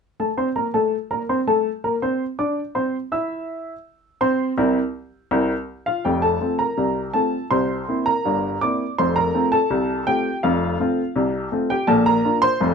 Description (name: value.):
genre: ragtime piano.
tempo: 82 BPM.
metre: 2/4.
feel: straight.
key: F major.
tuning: A4 = 439 Hz.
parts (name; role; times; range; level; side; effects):
warm upright piano; solo; 0.2-12.7 s; F1 to E6; -19 LUFS; equal; none.
room: moderate studio ambience, RT60 0.4 s.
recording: nothing above 10.8 kHz.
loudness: -19 LUFS.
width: side -6 dB against mid.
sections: 0.2-6.0 A section; 6.0-12.7 B section.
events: none.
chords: 0.2 Bbmaj9/A; 3.1 C7; 6.0 F; 7.5 C7; 9.0 F; 11.9 Bb.